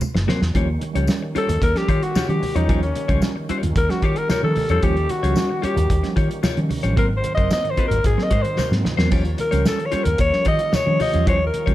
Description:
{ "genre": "funk", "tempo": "112 BPM", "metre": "4/4", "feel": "straight", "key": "Eb mixolydian", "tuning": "A4 = 441 Hz", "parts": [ { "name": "clean electric guitar", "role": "accompaniment", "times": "0.0-11.7 s", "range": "F4 to Db5", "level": "-29 LUFS", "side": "left 7 dB", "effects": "wide subtle chorus, plate reverb" }, { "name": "vintage muted fingered electric bass", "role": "bass", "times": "0.0-11.7 s", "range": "Gb1 to Eb3", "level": "-22 LUFS", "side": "equal", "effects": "none" }, { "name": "congas", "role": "percussion", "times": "0.0-11.7 s", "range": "none", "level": "-29 LUFS", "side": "right 3 dB", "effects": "none" }, { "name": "tambourine", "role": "percussion", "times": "0.0-10.9 s", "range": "none", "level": "-39 LUFS", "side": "left 5 dB", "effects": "none" }, { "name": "cloth-damped thuddy drum kit", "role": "drums", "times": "0.2-11.7 s", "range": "hi-hat, kick drum, snare drum, splash cymbal", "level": "-23 LUFS", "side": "equal", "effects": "none" }, { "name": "mellow tine electric piano", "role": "stabs", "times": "0.3-11.7 s", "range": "Ab2 to Db4", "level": "-27 LUFS", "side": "right 3 dB", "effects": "medium stereo tremolo, plate reverb" }, { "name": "tonewheel organ", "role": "sustained chords", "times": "0.6-11.7 s", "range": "Eb3 to Db4", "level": "-34 LUFS", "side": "right 1 dB", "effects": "overdrive, chorus vibrato, slow rotary speaker, plate reverb" }, { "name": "breathy alto saxophone", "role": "melody", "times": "1.4-11.7 s", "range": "Db4 to Eb5", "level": "-23 LUFS", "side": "left 1 dB", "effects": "plate reverb, analog delay" } ], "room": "moderate studio reverb, RT60 0.7 s", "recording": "dark, warm production", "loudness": "-17 LUFS", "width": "side -14 dB against mid", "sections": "0.5-11.7 A section", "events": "drum fill 0.0-0.5, 8.6-9.1; alto saxophone solo 0.5-11.7", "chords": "0.0 Ab9 (rootless); 0.5 Eb9; 7.0 Ab9; 9.1 Eb9", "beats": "0.01 | 0.55 1.08 1.62 2.16 | 2.69 3.23 3.76 4.30 | 4.83 5.37 5.91 6.44 | 6.98 7.51 8.05 8.59 | 9.12 9.66 10.20 10.73 | 11.27" }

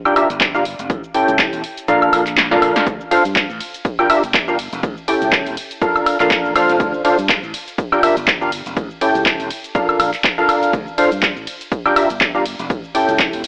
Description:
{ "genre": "piano house", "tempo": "122 BPM", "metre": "4/4", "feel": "swing 56% on 16ths", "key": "unclear", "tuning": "A4 = 439 Hz", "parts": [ { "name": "percussive organ stab", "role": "riff", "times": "0.1-13.4 s", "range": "C#4 to G5", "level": "-19 LUFS", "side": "equal", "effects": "ensemble chorus, sidechain pumping, analog delay" }, { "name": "punchy analog drum machine", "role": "drums", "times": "0.1-13.5 s", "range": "handclaps, hi-hat, ride cymbal, shaker, snare drum, woodblock", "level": "-21 LUFS", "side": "equal", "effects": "overdrive" }, { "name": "modern bright fingered electric bass", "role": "bass", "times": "0.3-13.4 s", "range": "E1 to G2", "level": "-31 LUFS", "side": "equal", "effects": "tube saturation, sidechain pumping" }, { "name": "electronic kick drum", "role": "drums", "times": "0.4-13.3 s", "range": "none", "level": "-25 LUFS", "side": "equal", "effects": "overdrive" } ], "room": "light reverb", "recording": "dry, gritty hardware recording, AM radio sound", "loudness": "-17 LUFS", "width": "mono", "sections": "0.0-13.5 A section", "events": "kick drops out 1.9-2.9; drum fill 2.4-2.9", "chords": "0.0 Gm7; 0.9 A7; 1.6 Bbmaj7; 2.9 Dm7; 3.6 Gm7; 4.8 A7; 5.6 Bbmaj7; 6.8 Dm7; 7.5 Gm7; 8.8 A7; 9.5 Bbmaj7; 10.7 Dm7; 11.5 Gm7; 12.7 A7", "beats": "0.41 | 0.90 1.39 1.88 2.37 | 2.87 3.36 3.85 4.34 | 4.83 5.33 5.82 6.31 | 6.80 7.29 7.78 8.28 | 8.77 9.26 9.75 10.24 | 10.73 11.23 11.72 12.21 | 12.70 13.19" }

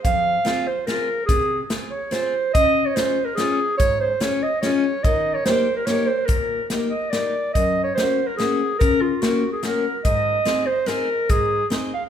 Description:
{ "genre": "alpine folk, alpine dance band", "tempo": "144 BPM", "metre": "3/4", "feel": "swing 53% on 8ths", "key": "Ab major", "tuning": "A4 = 440 Hz", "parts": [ { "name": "mellow clarinet", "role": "melody", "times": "0.0-12.0 s", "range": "F4 to F5", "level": "-21 LUFS", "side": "right 2 dB", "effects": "none" }, { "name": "natural country drum kit", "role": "drums", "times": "0.0-11.8 s", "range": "hi-hat, kick drum, snare drum", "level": "-24 LUFS", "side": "equal", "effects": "none" }, { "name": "picked steel-string acoustic guitar", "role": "accompaniment", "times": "0.1-11.9 s", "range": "F2 to Ab4", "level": "-25 LUFS", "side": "left 4 dB", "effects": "none" } ], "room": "light reverb", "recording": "minimal, uncompressed stereo recording", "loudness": "-18 LUFS", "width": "side -9 dB against mid", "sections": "0.0-12.1 A section", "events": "none", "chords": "0.0 Fm; 2.6 Db; 5.0 Eb; 7.6 Gb; 10.1 Abadd9", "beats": "| 0.04 0.45 0.87 | 1.28 1.70 2.13 | 2.55 2.98 3.39 | 3.81 4.22 4.63 | 5.04 5.46 5.87 | 6.29 6.71 7.13 | 7.55 7.98 8.40 | 8.81 9.23 9.64 | 10.06 10.47 10.88 | 11.30 11.71" }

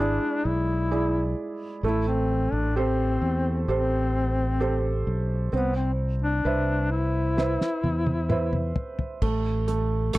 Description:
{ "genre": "pop ballad", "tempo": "65 BPM", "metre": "4/4", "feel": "straight", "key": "unclear", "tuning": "A4 = 440 Hz", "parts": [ { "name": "warm duduk", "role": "melody", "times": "0.0-10.2 s", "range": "B3 to E4", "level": "-28 LUFS", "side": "left 3 dB", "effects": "slapback echo" }, { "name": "felt-muted upright piano", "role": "accompaniment", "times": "0.0-10.2 s", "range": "G#3 to E5", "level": "-29 LUFS", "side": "right 4 dB", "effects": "none" }, { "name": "fretless electric bass", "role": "bass", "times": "0.0-10.2 s", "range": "G#1 to E2", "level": "-26 LUFS", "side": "equal", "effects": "none" }, { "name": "damped 70s drum kit", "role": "drums", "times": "7.4-10.2 s", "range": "crash cymbal, hi-hat, kick drum, rim click, snare drum, toms", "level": "-28 LUFS", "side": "equal", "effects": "none" } ], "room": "little or no reverb", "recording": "dry, close 1970s-style studio recording", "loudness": "-23 LUFS", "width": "side -18 dB against mid", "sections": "0.0-9.2 A section", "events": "drum fill 7.4-9.2", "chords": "0.0 E7/G#; 1.8 Am7; 5.5 Cmaj7; 9.2 N.C.", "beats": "0.91 | 1.83 2.76 3.68 4.60 | 5.53 6.45 7.37 8.29 | 9.22 10.14" }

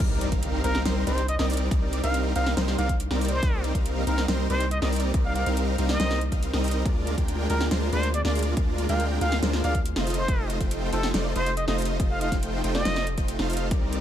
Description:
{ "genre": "future bass", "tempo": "140 BPM", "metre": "4/4", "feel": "half-time", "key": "C minor", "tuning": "A4 = 440 Hz", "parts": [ { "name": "airy breathy pad", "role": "sustained chords", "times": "0.0-14.0 s", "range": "C3 to A4", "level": "-37 LUFS", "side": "left 1 dB", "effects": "none" }, { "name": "supersaw chords", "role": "riff", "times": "0.0-14.0 s", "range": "G3 to G5", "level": "-29 LUFS", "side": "right 1 dB", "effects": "sidechain pumping" }, { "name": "long sustained 808-style bass", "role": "bass", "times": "0.0-14.0 s", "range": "F1 to D2", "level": "-28 LUFS", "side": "equal", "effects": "sidechain pumping" }, { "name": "electronic kick drum", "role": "drums", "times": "0.0-13.8 s", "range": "none", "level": "-26 LUFS", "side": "equal", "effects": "overdrive" }, { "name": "pop drum kit", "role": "drums", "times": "0.0-14.0 s", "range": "crash cymbal, hi-hat, snare drum", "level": "-31 LUFS", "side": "equal", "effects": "overdrive" }, { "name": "impact", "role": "sound effects", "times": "0.0-1.7 s", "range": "none", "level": "-35 LUFS", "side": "equal", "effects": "none" }, { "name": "trumpet with plunger mute", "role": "melody", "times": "0.6-13.1 s", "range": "A4 to F5", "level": "-31 LUFS", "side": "equal", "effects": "sidechain pumping, ping-pong delay" } ], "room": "digital ambience", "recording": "none", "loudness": "-23 LUFS", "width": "side -10 dB against mid", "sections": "0.0-14.0 A section", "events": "drop 0.0-14.0; impact 0.0-1.7", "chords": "0.0 Cm9; 6.9 Bb7/D; 10.1 F7", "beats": "| 0.00 0.43 0.85 1.28 | 1.71 2.14 2.57 3.00 | 3.43 3.85 4.28 4.71 | 5.14 5.57 6.00 6.43 | 6.86 7.28 7.71 8.14 | 8.57 9.00 9.43 9.86 | 10.28 10.71 11.14 11.57 | 12.00 12.43 12.86 13.28 | 13.71" }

